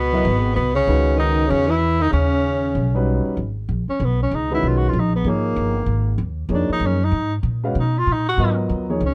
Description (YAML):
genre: jazz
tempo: 192 BPM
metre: 4/4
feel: swing 62% on 8ths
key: G# dorian from 3.4 s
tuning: A4 = 441 Hz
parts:
  - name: breathy tenor saxophone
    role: melody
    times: 0.0-9.1 s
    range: A#3 to F#4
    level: -24 LUFS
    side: equal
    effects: none
  - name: clear tenor saxophone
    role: second line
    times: 0.0-3.0 s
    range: A#2 to E3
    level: -26 LUFS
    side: equal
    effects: none
  - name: upright bass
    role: bass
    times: 0.0-9.1 s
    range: G1 to B2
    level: -23 LUFS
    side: equal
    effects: none
  - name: dark concert grand piano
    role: accompaniment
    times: 0.1-9.0 s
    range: D#3 to E#5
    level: -26 LUFS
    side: equal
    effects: none
room: light reverb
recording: dark, warm production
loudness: -20 LUFS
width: mono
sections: 0.0-3.4 A section; 3.4-9.1 B section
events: tenor saxophone solo 3.4-9.1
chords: 0.0 C#m11; 2.1 D#7alt; 3.4 G#m69; 8.4 F#add9